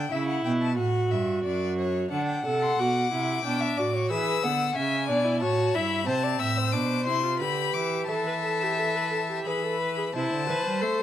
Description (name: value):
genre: classical, baroque-style fugue for string quartet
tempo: 90 BPM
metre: 3/4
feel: straight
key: A minor from 6.1 s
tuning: A4 = 438 Hz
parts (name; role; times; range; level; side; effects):
- rich violin; melody; 0.0-11.0 s; C#5 to E6; -31 LUFS; left 9 dB; none
- rich viola; accompaniment; 0.0-11.0 s; B3 to B4; -29 LUFS; right 1 dB; none
- rich cello; bass; 0.0-11.0 s; F#2 to A3; -30 LUFS; right 3 dB; none
- rich violin; second line; 2.1-11.0 s; B4 to G5; -29 LUFS; left 2 dB; none
room: moderate large studio reverb, RT60 1.1 s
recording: none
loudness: -24 LUFS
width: side -11 dB against mid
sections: 0.0-2.1 A section; 2.1-10.1 B section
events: none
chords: 0.1 A7; 1.4 D/F#; 2.1 D7; 3.5 G/B; 4.1 E7; 5.4 A; 6.1 Am; 7.4 G6/D; 8.1 Esus4; 9.5 E; 10.1 Am/C